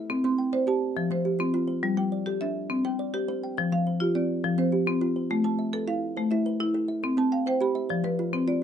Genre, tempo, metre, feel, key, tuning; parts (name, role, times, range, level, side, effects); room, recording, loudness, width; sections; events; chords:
southern african traditional, mbira-style interlocking cycle; 138 BPM (dotted quarters); 12/8; straight; C major; A4 = 437 Hz
kalimba; arpeggios; 0.0-8.6 s; F3 to G5; -29 LUFS; right 6 dB
marimba with hard mallets; arpeggios; 0.1-8.6 s; F3 to C6; -26 LUFS; left 2 dB
moderate small room reverb, RT60 0.5 s; dark, warm production, nothing above 10.8 kHz; -24 LUFS; side -9 dB against mid
0.0-7.0 A section; 7.0-8.6 B section
0.1 C; 1.0 F; 1.8 G5; 2.7 C; 3.6 F; 5.3 Am; 7.0 C; 7.9 F5